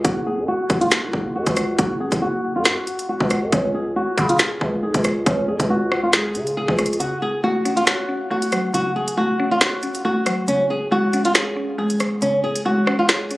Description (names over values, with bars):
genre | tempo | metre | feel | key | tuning
hip hop, drill | 138 BPM | 4/4 | half-time | F# harmonic minor | A4 = 440 Hz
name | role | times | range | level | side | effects
flamenco guitar | melody | 0.0-13.4 s | C#4 to G#4 | -21 LUFS | equal | low-pass filter, tape echo
growling 808-style bass | bass | 0.0-7.0 s | F#1 to C#3 | -23 LUFS | equal | none
drill drum kit | drums | 0.0-13.4 s | finger snaps, hi-hat, kick drum, rim click, snare drum | -20 LUFS | equal | none
mallet-like synth pluck | accompaniment | 7.0-13.4 s | C#3 to C#5 | -24 LUFS | equal | chorus, low-pass filter
room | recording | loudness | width
light reverb | recorded on a phone in the room, club reverb, lossy compression artefacts | -18 LUFS | side -19 dB against mid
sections
0.0-13.4 A section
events
filter sweep 0.0-7.0; kick muted 7.0-13.4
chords
0.0 F#5; 3.5 C#5; 7.0 F#m; 10.5 C#5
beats
| 0.05 0.48 0.92 1.35 | 1.78 2.22 2.65 3.09 | 3.52 3.96 4.39 4.83 | 5.26 5.70 6.13 6.57 | 7.00 7.44 7.87 8.31 | 8.74 9.18 9.61 10.05 | 10.48 10.92 11.35 11.79 | 12.22 12.65 13.09